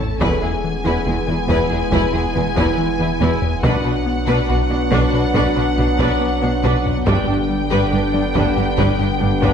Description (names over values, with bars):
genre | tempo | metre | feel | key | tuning
cinematic, hybrid orchestral and electronic film score | 70 BPM | 4/4 | straight | B minor | A4 = 439 Hz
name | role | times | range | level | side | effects
rich symphonic violin section | melody | 0.0-9.5 s | F#5 to A5 | -26 LUFS | left 2 dB | none
evolving wavetable pad | sustained chords | 0.0-9.5 s | E3 to B4 | -28 LUFS | equal | none
mellow French horn section | sustained chords | 0.0-9.5 s | B3 to A4 | -26 LUFS | left 3 dB | none
mellow trombone section | sustained chords | 0.0-9.5 s | D3 to B3 | -26 LUFS | right 3 dB | none
rubbery square bass | riff | 0.0-9.5 s | E2 to B3 | -24 LUFS | left 3 dB | none
punchy sub bass | bass | 0.0-9.5 s | E1 to B1 | -26 LUFS | equal | none
taiko ensemble | drums | 0.0-9.5 s | none | -25 LUFS | equal | none
warm symphonic violin section | second line | 0.2-9.5 s | D4 to B4 | -26 LUFS | left 4 dB | none
rich symphonic viola section | accompaniment | 0.2-9.5 s | D4 to E4 | -27 LUFS | right 2 dB | none
tight sequenced synth | arpeggios | 0.2-9.5 s | E3 to B4 | -30 LUFS | right 1 dB | none
rich symphonic cello section | bass | 0.2-9.5 s | E2 to B2 | -24 LUFS | right 2 dB | none
rich symphonic double bass section | bass | 0.2-9.3 s | E1 to B1 | -25 LUFS | right 3 dB | none
room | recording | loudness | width
moderate scoring stage reverb, RT60 1.5 s | none | -15 LUFS | side -7 dB against mid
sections
0.0-9.5 A section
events
none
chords
0.2 E; 3.6 Bm; 7.1 G